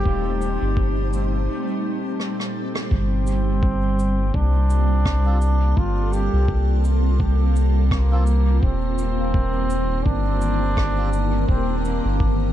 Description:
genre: ambient dub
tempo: 84 BPM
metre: 4/4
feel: swing 56% on 16ths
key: G minor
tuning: A4 = 443 Hz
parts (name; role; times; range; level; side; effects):
- clear trombone; melody; 0.0-12.5 s; Bb3 to G4; -28 LUFS; equal; vintage 12-bit sampler grit, dub echo
- soft additive organ-like pad; sustained chords; 0.0-12.5 s; Bb2 to C5; -26 LUFS; right 1 dB; ensemble chorus, built-in reverb
- soft dub sub bass; bass; 0.0-12.5 s; Eb1 to C2; -20 LUFS; equal; tube saturation
- backwards swelling texture; texture; 0.0-1.5 s; A3 to A5; -35 LUFS; left 4 dB; built-in reverb
- electronic kick drum; drums; 0.1-12.4 s; none; -21 LUFS; equal; overdrive
- cabasa and rim click; drums; 0.4-12.0 s; none; -33 LUFS; right 1 dB; dub echo
- melodica; stabs; 5.3-11.1 s; Bb3 to A4; -41 LUFS; right 2 dB; none
room: small room ambience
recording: dark, warm production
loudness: -18 LUFS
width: side -12 dB against mid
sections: 0.0-2.9 A section; 2.9-12.5 B section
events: break 1.5-2.9; drum fill 2.2-2.9; band accent 2.7-3.1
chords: 0.0 Eb6; 2.9 Gm11; 8.6 Eb6

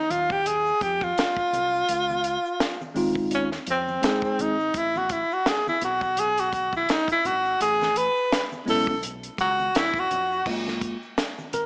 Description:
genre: hip hop, jazz-hop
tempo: 84 BPM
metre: 4/4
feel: swing 57% on 16ths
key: unclear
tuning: A4 = 443 Hz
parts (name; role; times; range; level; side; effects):
- breathy tenor saxophone; melody; 0.0-10.5 s; C4 to B4; -26 LUFS; equal; slapback echo
- deep dub fingered electric bass; bass; 0.1-11.7 s; E1 to F2; -41 LUFS; equal; none
- compact cocktail drum kit; drums; 0.1-11.7 s; crash cymbal, hi-hat, kick drum, snare drum; -31 LUFS; equal; none
- congas and egg shaker; percussion; 0.1-11.7 s; none; -47 LUFS; equal; none
- mellow tine electric piano; accompaniment; 2.9-11.7 s; Ab3 to Bb4; -29 LUFS; equal; lush chorus
room: light reverb, small room ambience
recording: vinyl crackle, small speaker sound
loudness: -25 LUFS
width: mono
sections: 0.0-10.5 A section; 10.5-11.7 A section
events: tenor saxophone solo 0.0-10.5; tine electric piano solo 10.5-11.7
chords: 0.0 Dbmaj9 (rootless); 4.7 Amaj7sus2; 10.5 Gbmaj9

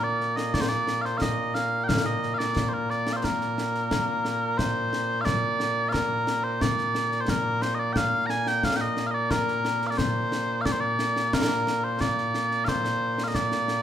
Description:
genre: scottish traditional, Scottish pipe music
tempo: 89 BPM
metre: 2/4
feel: straight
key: Bb major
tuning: A4 = 437 Hz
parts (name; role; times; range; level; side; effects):
- mellow small bagpipes; melody; 0.0-13.8 s; Bb2 to Bb5; -25 LUFS; equal; none
- concert snare drum and concert bass drum; drums; 0.2-13.8 s; none; -30 LUFS; left 1 dB; none
room: moderate recital hall reverb, RT60 1.4 s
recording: minimal, uncompressed stereo recording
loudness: -23 LUFS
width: side -10 dB against mid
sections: 0.0-4.6 A section; 4.6-13.8 B section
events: none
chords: none

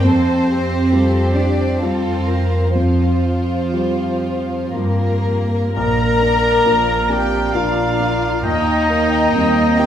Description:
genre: cinematic, emotional film score for orchestra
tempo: 57-70 BPM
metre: 3/4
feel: rubato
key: Bb major from 5.8 s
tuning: A4 = 441 Hz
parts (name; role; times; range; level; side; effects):
- warm symphonic violin section; melody; 0.0-9.9 s; F4 to G5; -31 LUFS; left 2 dB; none
- warm chamber violin section; second line; 0.0-9.9 s; F4 to Bb5; -24 LUFS; right 1 dB; none
- rich chamber viola section; accompaniment; 0.0-9.9 s; Bb3 to C5; -22 LUFS; left 2 dB; none
- warm concert grand piano; accompaniment; 0.0-9.9 s; Bb1 to Bb4; -20 LUFS; equal; none
- dark symphonic double bass section; bass; 0.0-9.9 s; Bb1 to G2; -21 LUFS; equal; none
- rich symphonic cello section; bass; 0.0-9.9 s; F3 to Eb4; -23 LUFS; right 2 dB; none
- mellow hollow concert flute; second line; 5.8-9.9 s; Bb5; -25 LUFS; left 1 dB; none
- warm clarinet; second line; 5.8-9.9 s; D5 to Eb5; -25 LUFS; left 1 dB; none
- warm oboe; second line; 5.8-9.9 s; F5 to G5; -26 LUFS; right 1 dB; none
room: wet stone room reverb, RT60 1.0 s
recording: heard from further back in the room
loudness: -15 LUFS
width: side -10 dB against mid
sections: 0.0-5.8 A section; 5.8-9.9 B section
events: none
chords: 0.0 Fsus2; 5.8 Bb; 8.5 Eb

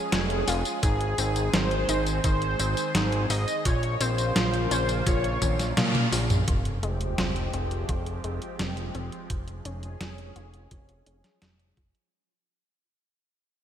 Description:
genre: synthwave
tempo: 85 BPM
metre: 4/4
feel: straight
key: F minor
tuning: A4 = 440 Hz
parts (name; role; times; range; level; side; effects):
- wide unison lead; melody; 0.0-5.7 s; Ab4 to Eb5; -31 LUFS; equal; lush chorus, vintage 12-bit sampler grit, ping-pong delay
- lush unison pad; sustained chords; 0.0-12.1 s; Db3 to Ab4; -33 LUFS; right 1 dB; chorus, phaser, sidechain pumping
- analog pluck; arpeggios; 0.1-12.0 s; Eb3 to F4; -35 LUFS; left 2 dB; chorus, vintage 12-bit sampler grit, ping-pong delay
- fat analog bass; bass; 0.1-11.9 s; F1 to Bb2; -29 LUFS; equal; none
- detuned 8-bit digital drum machine; drums; 0.1-12.1 s; hi-hat, snare drum, tambourine, toms; -28 LUFS; equal; gated reverb
- electronic kick drum; drums; 0.8-11.9 s; none; -28 LUFS; equal; none
- sub drop; sound effects; 6.5-9.3 s; none; -36 LUFS; equal; none
room: moderate lush hall reverb, RT60 2.6 s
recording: bright 1980s-style digital production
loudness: -24 LUFS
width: side -9 dB against mid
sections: 0.0-6.5 A section; 6.5-12.1 B section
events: drum fill 5.4-6.5; band accent 5.8-6.1; fade-out 6.5-12.1; impact 6.5-9.3; filter sweep on synth arpeggio sound 6.5-12.1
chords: 0.0 Db/F; 0.8 Ab; 3.7 Bbmadd9; 6.5 Fmadd9; 9.3 Db/F

